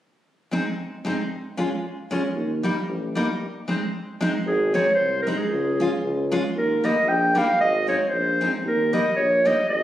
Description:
alpine folk, alpine dance band; 114 BPM; 2/4; swing 55% on 8ths; Ab major; A4 = 440 Hz
picked steel-string acoustic guitar; accompaniment; 0.5-9.6 s; G3 to F4; -26 LUFS; left 1 dB
clear tuba; bass; 2.3-9.8 s; Ab1 to Eb2; -27 LUFS; equal
warm clarinet; melody; 4.5-9.8 s; Ab4 to G5; -21 LUFS; right 1 dB
wet recital hall reverb, RT60 1.4 s; recorded on a phone in the room, studio reverb, compression; -20 LUFS; side -12 dB against mid
0.2-4.4 A section; 4.4-9.8 B section
0.2 Ab; 1.3 Db; 2.3 Eb; 3.4 Ab; 5.5 Db; 6.5 Eb; 7.6 Ab; 8.6 Eb

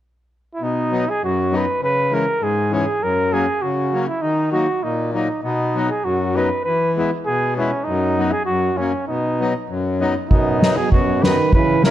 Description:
alpine folk, alpine dance band; 99 BPM; 2/4; straight; B major; A4 = 440 Hz
clear flugelhorn; melody; 0.5-11.9 s; C#4 to B4; -20 LUFS; right 1 dB
accordion; accompaniment; 0.6-11.9 s; F#2 to E4; -21 LUFS; left 2 dB
warm euphonium; second line; 10.3-11.9 s; F#2 to E3; -20 LUFS; right 6 dB
soft-mallet drum kit; drums; 10.3-11.9 s; kick drum, snare drum; -17 LUFS; equal
light reverb; dark, warm production, faint mains hum; -17 LUFS; side -12 dB against mid
0.6-10.3 A section; 10.3-11.9 A section
0.0 N.C.; 0.6 B; 1.8 C#m; 3.0 F#; 4.2 D#m; 5.4 B; 6.7 E; 7.9 B/F#; 8.5 F#; 9.1 B

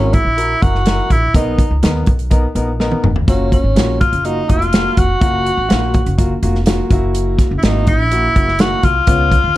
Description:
uptempo 1960s-style soul; 124 BPM; 4/4; straight; F# major; A4 = 437 Hz
warm tenor saxophone; melody; 0.0-9.6 s; C#4 to F#4; -17 LUFS; equal
warm grand piano; accompaniment; 0.0-9.3 s; A#3 to A#4; -21 LUFS; left 2 dB
upright bass; bass; 0.0-9.5 s; E#1 to D#2; -18 LUFS; equal
natural country drum kit; drums; 0.1-9.4 s; hi-hat, kick drum, snare drum, toms; -15 LUFS; equal
little or no reverb; dark, warm production; -12 LUFS; side -15 dB against mid
0.0-9.6 A section
drum fill 2.8-3.3
0.0 F#7; 1.3 Bmaj7; 3.3 F#maj7; 6.9 F#7

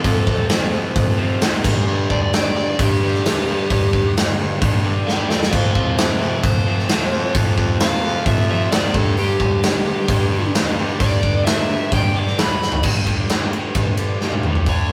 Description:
hard rock; 131 BPM; 4/4; straight; A4 = 439 Hz
dark smooth lead guitar; melody; 0.0-14.9 s; G4 to D6; -25 LUFS; equal; overdrive
cranked stack guitar; riff; 0.0-14.9 s; F2 to D4; -28 LUFS; equal; overdrive
sludgy distorted guitar; riff; 0.0-12.6 s; F2 to D4; -32 LUFS; equal
edgy baritone saxophone; bass; 0.0-14.9 s; C2 to D3; -29 LUFS; equal
big rock drum kit; drums; 0.0-14.8 s; crash cymbal, hi-hat, kick drum, ride cymbal, snare drum, toms; -20 LUFS; equal
light reverb; rough rehearsal-room recording; -18 LUFS; mono
0.0-12.8 A section; 12.8-14.7 B section
lead electric guitar solo 0.0-12.8; drum fill 5.1-5.5, 12.6, 14.2-14.7
0.0 F; 1.6 G; 5.5 F; 8.9 G; 12.8 G5

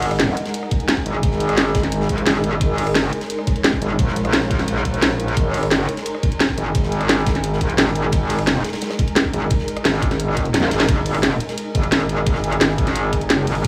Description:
dark technical drum and bass; 174 BPM; 4/4; straight; A4 = 436 Hz
swarming drone; sustained chords; 0.0-13.7 s; G#3 to C#5; -28 LUFS; equal; built-in reverb, vintage 12-bit sampler grit, sidechain pumping
metallic wobble bass; bass; 0.0-13.7 s; G#1 to A#1; -23 LUFS; equal; chorus, tube saturation, sidechain pumping
drum and bass drum kit; drums; 0.0-13.7 s; hi-hat, rim click, snare drum; -22 LUFS; equal
loose indie drum kit; drums; 0.0-13.7 s; hi-hat, ride cymbal, snare drum; -34 LUFS; equal
electronic kick drum; drums; 0.7-13.7 s; -23 LUFS; equal
light reverb; small room reverb; -19 LUFS; mono
0.0-10.9 A section; 10.9-13.7 A section
drop 0.0-10.9, 10.9-13.7; drum fill 10.5-10.9; band accent 10.8
0.0 G#5

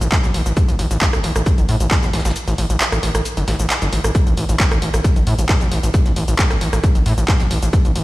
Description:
driving peak-time techno; 134 BPM; 4/4; straight; A4 = 440 Hz
gritty driven synth bass; bass; 0.0-8.0 s; G1 to A2; -18 LUFS; equal; sidechain pumping
techno drum kit; drums; 0.0-8.0 s; handclaps, hi-hat, rim click, shaker; -22 LUFS; equal; overdrive, studio reverb
dusty soul sampler-style drum kit; drums; 0.1-8.0 s; hi-hat, shaker, snare drum; -32 LUFS; equal
electronic kick drum; drums; 0.1-7.8 s; -16 LUFS; equal; overdrive, studio reverb
little or no reverb; played on a big sound system in a bare room, stone room reverb; -15 LUFS; side -18 dB against mid
0.0-8.0 A section
kick drops out 2.4-4.2

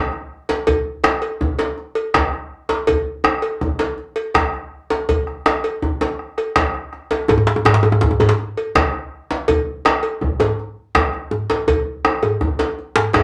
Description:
west african traditional, West African drum ensemble; 109 BPM (dotted quarters); 12/8; straight
djembe; percussion; 0.1-13.2 s; -24 LUFS; equal
cowbell; percussion; 0.5-13.2 s; -24 LUFS; equal
bombo; percussion; 0.7-13.2 s; -23 LUFS; equal
djembe; percussion; 7.3-13.2 s; -19 LUFS; equal
wet small room reverb, RT60 0.5 s; -19 LUFS; mono
0.0-7.3 A section; 7.3-13.2 B section

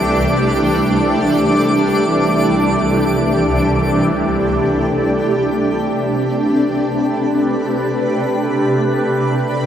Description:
ambient; free time; A4 = 440 Hz
shimmering ambient pad; sustained chords; 0.0-9.7 s; C2 to B4; -14 LUFS; equal; chorus, built-in reverb, phaser, shimmer reverb
bowed-like drone; drone; 0.0-4.2 s; C3 to G3; -23 LUFS; right 1 dB; built-in reverb
twinkling granular texture; texture; 0.0-9.7 s; B5 to D6; -26 LUFS; left 1 dB; built-in reverb, shimmer reverb
wet huge ambient reverb, RT60 7.1 s; -14 LUFS; side -9 dB against mid
0.0-4.1 A section; 4.1-9.7 B section
0.0 C69; 4.1 Am11/C

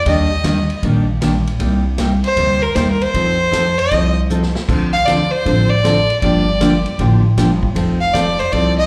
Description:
country, western swing; 156 BPM; 4/4; swing 66% on 8ths; A4 = 439 Hz
clear fiddle; melody; 0.0-8.9 s; Bb4 to F5; -19 LUFS; equal; slapback echo
picked steel-string acoustic guitar; accompaniment; 0.1-8.8 s; C3 to A4; -20 LUFS; equal
upright bass; bass; 0.1-8.9 s; F1 to F2; -21 LUFS; equal
vintage drum kit; drums; 0.1-8.6 s; crash cymbal, hi-hat, kick drum, ride cymbal, snare drum; -28 LUFS; equal
light reverb, small room ambience; live gig heard through the venue's PA, club reverb; -16 LUFS; mono
0.0-8.9 A section
drum fill 4.3-4.7
0.1 Ebmaj7; 1.6 Cm7; 3.1 F7; 4.7 Dm7; 6.2 Gm7; 7.8 F7

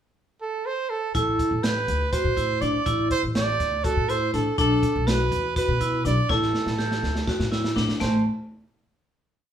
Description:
progressive instrumental, band music in an uneven meter; 245 BPM (eighths); 7/8; straight; A dorian; A4 = 440 Hz
bright trumpet; melody; 0.4-8.2 s; A4 to D5; -26 LUFS; right 5 dB
vibraphone with hard mallets; arpeggios; 1.1-8.2 s; A3 to G4; -26 LUFS; left 1 dB
upright bass; bass; 1.1-8.2 s; A1 to B2; -27 LUFS; left 1 dB
crunchy breakbeat drum kit; drums; 1.1-8.1 s; crash cymbal, hi-hat, kick drum, snare drum; -28 LUFS; right 1 dB
wet studio reverb, RT60 0.6 s; band playing live in one room; -21 LUFS; side -9 dB against mid
0.0-1.1 pickup bar; 1.1-8.0 A section; 8.0-9.5 final chord
drum fill 6.3-8.0
0.0 N.C.; 1.1 Am7; 4.6 Bm7; 6.3 A5; 8.0 N.C.

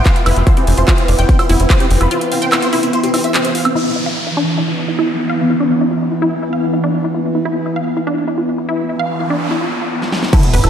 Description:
psychedelic trance; 146 BPM; 4/4; straight; A4 = 440 Hz
bubbling stepped-filter texture; sustained chords; 0.0-10.7 s; E3 to B3; -18 LUFS; equal; chorus, built-in reverb, sidechain pumping
dense compressed supersaw; melody; 0.1-3.7, 10.3-10.7 s; B3 to F5; -21 LUFS; equal; phaser, sidechain pumping, analog delay
big-room dance drum kit; drums; 0.1-3.8, 10.0-10.7 s; crash cymbal, handclaps, hi-hat, snare drum, woodblock; -19 LUFS; right 1 dB; low-pass filter on hats, low-pass filter on perc, low-pass filter on snare, low-pass filter on cymbals, low-pass filter on room
electronic kick drum; drums; 0.1-1.8, 10.3-10.4 s; -12 LUFS; equal
wide unison pluck; riff; 0.2-10.7 s; D4 to G5; -20 LUFS; equal; auto-pan, sidechain pumping, ping-pong delay
tight sequencer bass; bass; 0.3-2.1, 10.5-10.7 s; E1 to F1; -13 LUFS; equal
downlifter, noise sweep and sub drop; sound effects; 3.8-10.7 s; -23 LUFS; equal
wet lush hall reverb, RT60 1.7 s, digital ambience; dreamy mix soaked in reverb; -13 LUFS; side -9 dB against mid
0.0-3.8 A section; 3.8-10.3 B section
break 2.1-3.8; filter sweep on drum 3.8-10.3; filter sweep on synth arpeggio sound 3.8-10.3; noise sweep 9.0-10.3; drum fill 10.0-10.3; impact 10.3-10.7
0.0 F5; 3.8 E5

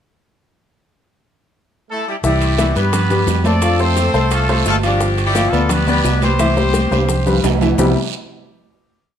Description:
latin, salsa; 173 BPM; 4/4; straight; C major; A4 = 440 Hz
clear horn section; melody; 1.9-7.4 s; G3 to D5; -20 LUFS; equal
warm baby grand piano; accompaniment; 2.2-8.0 s; C3 to F5; -19 LUFS; left 2 dB
fingered electric bass; bass; 2.2-7.9 s; G1 to G2; -18 LUFS; right 1 dB
bongos; percussion; 2.2-7.9 s; -28 LUFS; left 5 dB
congas; percussion; 2.2-7.9 s; -23 LUFS; left 1 dB
guiro; percussion; 2.2-7.9 s; -30 LUFS; right 10 dB
maracas; percussion; 2.2-7.9 s; -32 LUFS; left 8 dB
timbales; percussion; 2.4-7.9 s; -25 LUFS; right 9 dB
moderate large studio reverb, RT60 0.9 s; -13 LUFS; side -9 dB against mid
0.9-2.2 pickup bar; 2.2-7.8 A section; 7.8-9.2 final chord
drum fill 6.4-7.8
0.9 N.C.; 2.2 Cmaj7; 3.6 F; 5.0 G7; 6.4 Cmaj7

